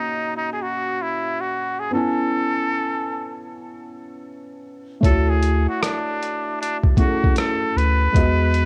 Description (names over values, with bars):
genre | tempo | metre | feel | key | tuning
lo-fi hip hop | 77 BPM | 4/4 | swing 65% on 16ths | unclear | A4 = 445 Hz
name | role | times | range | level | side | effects
trumpet with straight mute | melody | 0.0-8.7 s | D4 to B4 | -26 LUFS | equal | cassette tape
felt-muted upright piano | accompaniment | 0.0-8.7 s | G#3 to G#5 | -28 LUFS | equal | cassette tape
round analog bass | bass | 5.0-8.7 s | D2 to E2 | -21 LUFS | equal | none
boom bap sampler-style drum kit | drums | 5.0-8.7 s | hi-hat, kick drum, rim click | -22 LUFS | equal | cassette tape
room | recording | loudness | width
light reverb, digital ambience | home recording on cassette | -21 LUFS | mono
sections
0.0-8.7 A section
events
none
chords
0.0 F#13/A#; 1.9 Amaj9; 5.0 Dmaj9; 8.1 Emaj9